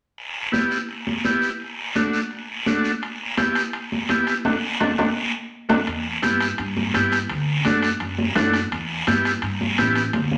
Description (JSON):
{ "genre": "latin, cumbia", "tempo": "169 BPM", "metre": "4/4", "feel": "straight", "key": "E minor", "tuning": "A4 = 440 Hz", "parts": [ { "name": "guiro", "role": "percussion", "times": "0.2-10.4 s", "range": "none", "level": "-31 LUFS", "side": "equal", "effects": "none" }, { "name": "combo organ", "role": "accompaniment", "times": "0.5-10.0 s", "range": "A3 to G4", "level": "-24 LUFS", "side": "equal", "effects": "none" }, { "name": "congas", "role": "percussion", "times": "0.5-10.4 s", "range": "none", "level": "-29 LUFS", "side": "equal", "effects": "none" }, { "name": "timbales", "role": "percussion", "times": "3.0-10.3 s", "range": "none", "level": "-31 LUFS", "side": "equal", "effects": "none" }, { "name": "upright bass", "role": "bass", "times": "5.9-10.4 s", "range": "A1 to G2", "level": "-30 LUFS", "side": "equal", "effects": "none" } ], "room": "wet large studio reverb, RT60 0.9 s", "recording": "none", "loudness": "-22 LUFS", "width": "mono", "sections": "0.2-5.9 A section; 5.9-10.4 B section", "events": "band accent 4.5-5.9; drum fill 5.3-5.9, 10.1", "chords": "0.2 Em; 1.6 D; 3.0 Em; 4.5 D; 5.9 Em; 7.3 D; 8.7 Em" }